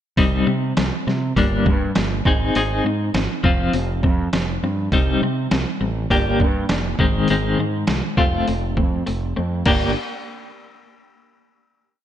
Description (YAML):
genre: indie rock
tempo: 101 BPM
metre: 4/4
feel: straight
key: G minor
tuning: A4 = 441 Hz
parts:
  - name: clean electric guitar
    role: riff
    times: 0.2-9.9 s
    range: Eb3 to Ab4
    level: -21 LUFS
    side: left 2 dB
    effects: tremolo, slapback echo
  - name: growling fingered electric bass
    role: bass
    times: 0.2-9.9 s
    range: F1 to C3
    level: -23 LUFS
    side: right 1 dB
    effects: overdrive
  - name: trip hop sampler-style drum kit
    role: drums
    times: 0.2-9.8 s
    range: crash cymbal, hi-hat, kick drum, snare drum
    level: -22 LUFS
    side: right 1 dB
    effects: none
room: light reverb, digital ambience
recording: none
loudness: -17 LUFS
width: side -10 dB against mid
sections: 0.2-9.7 verse; 9.7-12.0 final chord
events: break 9.1-9.7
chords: 0.2 Cm; 1.4 Gm; 2.3 Ab; 3.4 F5; 4.9 Cm; 6.1 Gm; 7.0 Ab; 8.2 F; 9.7 Gm